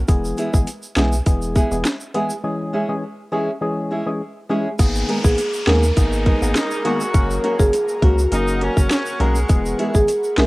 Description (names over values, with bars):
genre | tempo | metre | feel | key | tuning
dancehall | 102 BPM | 4/4 | straight | G# minor | A4 = 441 Hz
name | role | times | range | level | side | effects
punchy sub bass | bass | 0.0-10.5 s | E1 to D#2 | -21 LUFS | equal | none
percussive organ stab | accompaniment | 0.1-10.5 s | D#3 to A#4 | -24 LUFS | left 1 dB | chorus, sidechain pumping, cassette tape
island pop drum kit | drums | 0.1-10.5 s | crash cymbal, hi-hat, kick drum, snare drum | -18 LUFS | equal | cassette tape
tube shaker | percussion | 0.1-10.4 s | none | -34 LUFS | right 2 dB | none
nylon-string guitar | arpeggios | 0.4-10.5 s | G#3 to A#4 | -26 LUFS | right 1 dB | cassette tape, analog delay
granular cloud pad | sustained chords | 5.5-10.5 s | G#4 to C#6 | -31 LUFS | equal | built-in reverb, sidechain pumping, cassette tape
downlifter | sound effects | 4.8-9.5 s | none | -32 LUFS | left 1 dB | none
marimba with medium mallets | melody | 5.2-10.5 s | F#4 to A#4 | -22 LUFS | right 1 dB | cassette tape
clear horn section | second line | 6.0-9.8 s | G#3 to F#4 | -26 LUFS | equal | cassette tape, analog delay
room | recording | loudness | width
small room ambience | home recording on cassette | -17 LUFS | side -21 dB against mid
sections
0.0-4.8 A section; 4.8-10.5 B section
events
break 2.4-4.8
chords
0.1 E; 2.4 C#m; 4.8 G#madd9; 7.1 F#; 9.5 E